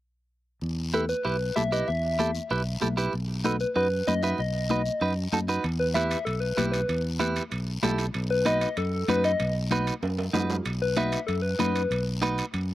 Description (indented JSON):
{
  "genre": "latin, cumbia",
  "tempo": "191 BPM",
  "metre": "4/4",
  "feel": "straight",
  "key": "E harmonic minor",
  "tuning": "A4 = 440 Hz",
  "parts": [
    { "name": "fingered electric bass", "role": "bass", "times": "0.6-12.7 s", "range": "B1 to F#2", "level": "-29 LUFS", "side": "equal", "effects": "none" },
    { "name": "congas", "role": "percussion", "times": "0.6-12.7 s", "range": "none", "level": "-34 LUFS", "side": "left 6 dB", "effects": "slapback echo" },
    { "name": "guiro", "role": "percussion", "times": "0.6-12.7 s", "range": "none", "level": "-40 LUFS", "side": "left 5 dB", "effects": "none" },
    { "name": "soft struck synth lead", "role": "melody", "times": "0.9-12.0 s", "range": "A4 to E5", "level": "-28 LUFS", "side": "left 2 dB", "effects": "chorus" },
    { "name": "clean electric guitar", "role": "accompaniment", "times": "0.9-12.4 s", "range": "D#4 to B4", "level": "-29 LUFS", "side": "right 4 dB", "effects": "none" },
    { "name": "timbales", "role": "percussion", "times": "5.6-12.7 s", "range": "none", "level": "-36 LUFS", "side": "right 4 dB", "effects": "slapback echo" }
  ],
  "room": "little or no reverb",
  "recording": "recorded outdoors, with no room sound",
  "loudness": "-24 LUFS",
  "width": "side -15 dB against mid",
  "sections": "0.6-5.6 A section; 5.6-12.7 B section",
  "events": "drum fill 10.0-10.7",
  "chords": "0.6 Em; 3.1 B; 5.6 Em; 8.1 B",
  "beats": "| 0.62 0.94 1.25 1.56 | 1.88 2.19 2.50 2.82 | 3.13 3.44 3.76 4.07 | 4.38 4.70 5.01 5.33 | 5.64 5.95 6.27 6.58 | 6.89 7.21 7.52 7.83 | 8.15 8.46 8.78 9.09 | 9.40 9.71 10.03 10.34 | 10.65 10.97 11.28 11.60 | 11.91 12.22 12.54"
}